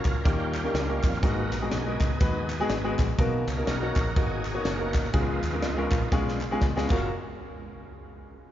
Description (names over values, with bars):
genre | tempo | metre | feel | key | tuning
uptempo gospel | 123 BPM | 4/4 | swing 60% on 8ths | unclear | A4 = 441 Hz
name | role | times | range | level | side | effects
warm baby grand piano | accompaniment | 0.0-7.1 s | F#2 to C#5 | -30 LUFS | left 1 dB | none
overdriven tonewheel organ | sustained chords | 0.0-7.1 s | E#3 to A#4 | -34 LUFS | right 2 dB | fast rotary speaker, chorus vibrato
fingered electric bass | bass | 0.1-7.1 s | F#1 to E#2 | -32 LUFS | equal | none
crisp fusion drum kit | drums | 0.1-7.0 s | crash cymbal, hi-hat, kick drum, snare drum | -28 LUFS | equal | none
group handclap | percussion | 0.1-7.1 s | none | -44 LUFS | left 1 dB | none
room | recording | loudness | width
moderate cathedral reverb, RT60 5.2 s | band playing live in one room, nothing above 7.5 kHz | -24 LUFS | side -12 dB against mid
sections
0.0-7.1 A section; 7.1-8.5 B section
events
tonewheel organ solo 0.0-7.1; drum fill 6.1-7.1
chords
0.3 D#7; 1.2 G#m7; 3.2 Bmaj7; 5.1 C#7; 6.9 F#maj7; 7.1 N.C.